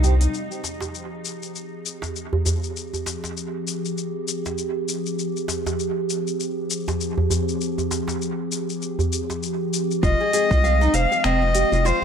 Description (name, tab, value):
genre	organic downtempo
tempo	99 BPM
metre	4/4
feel	swing 58% on 16ths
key	F minor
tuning	A4 = 436 Hz
part	warbly tape-like pad	sustained chords	0.0-12.0 s	C3 to G5	-27 LUFS	equal	chorus, built-in reverb, sidechain pumping
part	nylon-string guitar	arpeggios	0.0-0.3, 10.0-12.0 s	C4 to F5	-25 LUFS	equal	analog delay
part	round analog bass	bass	0.0-0.3, 10.0-12.0 s	F1 to C2	-20 LUFS	equal	sidechain pumping
part	organic electronic drum kit	drums	0.0-12.0 s	finger snaps, hi-hat, shaker	-30 LUFS	left 6 dB	none
part	djembe	percussion	0.0-9.4 s	none	-27 LUFS	right 2 dB	dub echo
part	rich cello	melody	10.0-12.0 s	C5 to F5	-23 LUFS	left 1 dB	dub echo
part	electronic kick drum	drums	10.0-10.6 s	none	-22 LUFS	equal	none
room	light reverb, small room reverb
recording	echo-heavy mix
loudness	-21 LUFS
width	side -7 dB against mid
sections	0.3-10.0 A section; 10.0-12.0 B section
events	none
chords	0.3 Fm; 10.0 Fm7